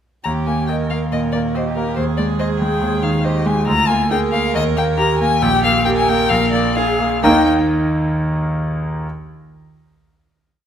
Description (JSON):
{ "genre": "quick classical-period movement for piano trio", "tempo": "124-142 BPM", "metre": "4/4", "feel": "rubato", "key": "Eb major", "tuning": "A4 = 440 Hz", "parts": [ { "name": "rich violin", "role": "melody", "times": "0.2-7.5 s", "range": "Bb4 to Bb5", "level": "-20 LUFS", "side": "left 5 dB", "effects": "none" }, { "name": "warm cello", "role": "second line", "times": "0.3-7.5 s", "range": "Bb3 to Bb4", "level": "-24 LUFS", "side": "right 6 dB", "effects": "none" }, { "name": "bright concert grand piano", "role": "accompaniment", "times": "0.3-9.1 s", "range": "Bb1 to Eb5", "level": "-17 LUFS", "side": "right 1 dB", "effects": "none" } ], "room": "moderate recital hall reverb, RT60 1.5 s", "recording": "none", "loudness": "-15 LUFS", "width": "side -9 dB against mid", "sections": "0.2-7.2 A section; 7.2-9.0 final chord", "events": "none", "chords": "0.2 Eb; 2.0 Fm9/Eb (rootless); 3.7 Bb7/D; 4.5 Eb; 5.4 Gm7/Bb; 6.3 Bb5; 7.2 Eb5", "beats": "| 0.24 0.69 1.12 1.55 | 1.97 2.40 2.82 3.25 | 3.68 4.11 4.55 4.99 | 5.43 5.87 6.31 6.77 | 7.24 7.69 8.14 8.59" }